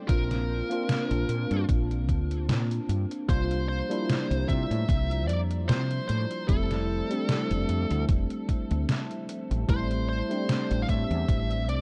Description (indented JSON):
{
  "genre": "vaporwave",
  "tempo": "75 BPM",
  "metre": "4/4",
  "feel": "swing 54% on 16ths",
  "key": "Bb lydian",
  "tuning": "A4 = 440 Hz",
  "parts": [
    { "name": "mellow tine electric piano", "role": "accompaniment", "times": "0.0-11.8 s", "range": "G3 to F4", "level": "-34 LUFS", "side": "equal", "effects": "analog chorus, tape echo" },
    { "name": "warbly tape-like pad", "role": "sustained chords", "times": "0.0-11.8 s", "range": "F3 to Bb5", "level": "-44 LUFS", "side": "equal", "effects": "chorus, built-in reverb, vintage 12-bit sampler grit" },
    { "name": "bluesy overdriven lead guitar", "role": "melody", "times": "0.1-11.8 s", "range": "A4 to F5", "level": "-37 LUFS", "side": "equal", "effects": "distortion, tape echo" },
    { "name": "woody fretless electric bass", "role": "bass", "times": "0.1-11.8 s", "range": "F1 to C3", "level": "-30 LUFS", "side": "equal", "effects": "none" },
    { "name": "detuned 8-bit digital drum machine", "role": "drums", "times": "0.1-11.8 s", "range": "hi-hat, snare drum", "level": "-33 LUFS", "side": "equal", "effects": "none" },
    { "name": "electronic kick drum", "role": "drums", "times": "0.1-11.5 s", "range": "none", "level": "-29 LUFS", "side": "equal", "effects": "none" }
  ],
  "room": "little or no reverb",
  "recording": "dark, warm production, cassette tape, nothing above 10.4 kHz",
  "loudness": "-28 LUFS",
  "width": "mono",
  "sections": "0.0-11.8 A section",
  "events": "none",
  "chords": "0.1 Bbmaj9; 3.3 C9sus4; 6.5 Fmaj7; 9.7 Am7"
}